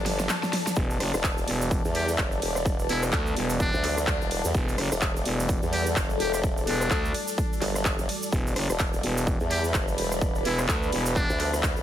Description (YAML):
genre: bass house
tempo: 127 BPM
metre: 4/4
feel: swing 58% on 16ths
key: E minor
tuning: A4 = 440 Hz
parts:
  - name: sweeping resonant pad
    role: sustained chords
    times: 0.0-11.8 s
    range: G3 to D5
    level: -35 LUFS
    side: equal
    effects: chorus, sidechain pumping
  - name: formant-sweep wobble bass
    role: bass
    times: 0.0-11.8 s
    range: E1 to E2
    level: -28 LUFS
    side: equal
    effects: chorus, overdrive, sidechain pumping
  - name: dark studio string section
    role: texture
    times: 0.0-11.8 s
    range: A4 to B5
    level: -35 LUFS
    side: left 4 dB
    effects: sidechain pumping
  - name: big-room dance drum kit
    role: drums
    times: 0.1-11.7 s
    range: handclaps, hi-hat, ride cymbal, rim click, snare drum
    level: -30 LUFS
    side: equal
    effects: overdrive
  - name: egg shaker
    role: percussion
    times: 0.2-11.8 s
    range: none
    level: -37 LUFS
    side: right 4 dB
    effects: none
  - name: growling FM bass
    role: bass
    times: 0.8-11.3 s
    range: E1 to D2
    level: -27 LUFS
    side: equal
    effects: sidechain pumping
  - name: electronic kick drum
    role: drums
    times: 0.8-11.7 s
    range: none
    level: -28 LUFS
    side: equal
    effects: overdrive
  - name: trumpet with metal mute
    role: melody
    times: 1.9-11.5 s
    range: D4 to G4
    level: -33 LUFS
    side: equal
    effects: ping-pong delay
room: light reverb, digital ambience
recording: none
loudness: -23 LUFS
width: side -11 dB against mid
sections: 0.0-11.8 A section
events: drum fill 0.0-0.8; kick drops out 0.3-0.8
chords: 0.0 Emadd9